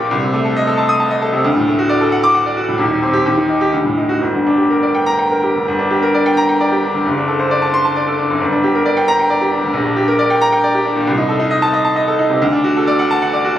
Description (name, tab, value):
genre	classical, virtuoso piano study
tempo	133 BPM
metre	3/4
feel	rubato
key	G minor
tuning	A4 = 441 Hz
part	bright grand piano	solo	0.0-13.6 s	Eb1 to Eb6	-13 LUFS	equal	none
room	wet recital hall reverb, RT60 1.3 s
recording	recorded on a phone in the room, club reverb, compression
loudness	-13 LUFS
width	side -12 dB against mid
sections	0.0-5.7 A section; 5.7-13.6 A section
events	none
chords	0.1 Adim/C; 1.4 D; 2.8 Cm/Eb; 3.3 Eb; 3.7 D; 4.2 Gm; 7.1 D7/F#; 8.4 Gm; 9.7 Gm/Bb; 11.1 Adim/C; 12.4 D